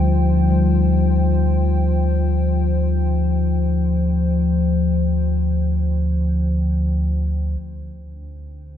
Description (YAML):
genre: dark ambient drone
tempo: free time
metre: none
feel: none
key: unclear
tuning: A4 = 440 Hz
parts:
  - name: dark analog pad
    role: sustained chords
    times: 0.0-8.8 s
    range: F3 to G5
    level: -29 LUFS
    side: left 1 dB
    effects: chorus
  - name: gamelan-type bossed gongs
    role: arpeggios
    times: 0.0-5.4 s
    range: G3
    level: -29 LUFS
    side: left 1 dB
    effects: none
  - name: deep rumbling drone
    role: drone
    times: 0.0-8.8 s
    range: D2 to F3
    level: -17 LUFS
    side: left 1 dB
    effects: built-in reverb
  - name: bronze singing bowl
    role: texture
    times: 0.0-7.6 s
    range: Eb4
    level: -46 LUFS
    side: right 4 dB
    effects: none
room: moderate lush hall reverb, RT60 3.0 s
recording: dreamy mix soaked in reverb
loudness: -16 LUFS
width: side -10 dB against mid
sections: 0.0-7.6 A section; 7.6-8.8 B section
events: fade-out on analog synth pad 0.0-7.6; filter sweep on synth drone 7.6-8.8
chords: 0.0 F5/D